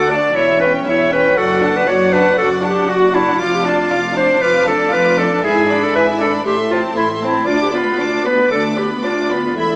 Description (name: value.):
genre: quick classical-period movement for symphony orchestra.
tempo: 118 BPM.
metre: 4/4.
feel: rubato.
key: unclear.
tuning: A4 = 443 Hz.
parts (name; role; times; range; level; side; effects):
rich chamber violin section; melody; 0.0-9.8 s; E5 to D6; -27 LUFS; equal; none.
clear clarinet; second line; 0.0-9.8 s; E4 to D5; -18 LUFS; equal; none.
rich chamber violin section; second line; 0.0-9.8 s; B4 to F#5; -27 LUFS; equal; none.
rich chamber viola section; accompaniment; 0.0-9.8 s; A3 to F#4; -22 LUFS; equal; none.
dark chamber cello section; bass; 0.0-9.8 s; D2 to A2; -28 LUFS; equal; none.
rich symphonic double bass section; bass; 0.0-9.8 s; E1 to D2; -30 LUFS; equal; none.
room: moderate scoring stage reverb, RT60 1.9 s.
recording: small speaker sound.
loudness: -15 LUFS.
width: mono.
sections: 0.0-9.8 A section.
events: none.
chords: 0.3 C#dim/E; 1.4 D/F#; 3.4 Dm/F; 5.4 E7/G#; 6.5 Am; 7.5 Bdim/D.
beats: 0.35 0.86 | 1.37 1.87 2.38 2.88 | 3.39 3.90 4.41 4.92 | 5.43 5.95 6.45 6.96 | 7.47 7.99 8.51 9.03 | 9.56.